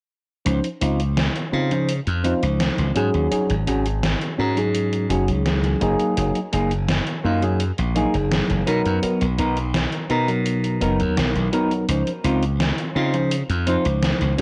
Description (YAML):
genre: vaporwave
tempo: 84 BPM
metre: 4/4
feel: straight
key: Db major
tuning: A4 = 440 Hz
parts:
  - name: tine electric piano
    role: accompaniment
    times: 0.5-14.4 s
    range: F3 to C5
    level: -27 LUFS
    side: equal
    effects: subtle chorus, vintage 12-bit sampler grit, tape echo
  - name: glassy slap bass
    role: bass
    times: 0.5-14.4 s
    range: Gb1 to Db3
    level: -25 LUFS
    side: equal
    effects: none
  - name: gated 80s digital drum machine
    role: drums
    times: 0.5-14.4 s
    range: hi-hat, snare drum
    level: -28 LUFS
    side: equal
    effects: gated reverb, gated reverb snare
  - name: semi-hollow electric guitar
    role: riff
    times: 0.8-14.4 s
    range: Bb3 to Bb4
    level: -28 LUFS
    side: equal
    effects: lush chorus, low-pass filter, tape echo
room: little or no reverb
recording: dry, gritty hardware recording, cassette tape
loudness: -21 LUFS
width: mono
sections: 0.5-14.4 A section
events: filter sweep on clean electric guitar 0.5-14.4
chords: 0.5 Dbmaj9; 3.0 Ab7sus4; 5.8 Gb69; 8.7 Cbmaj7; 11.9 Dbmaj9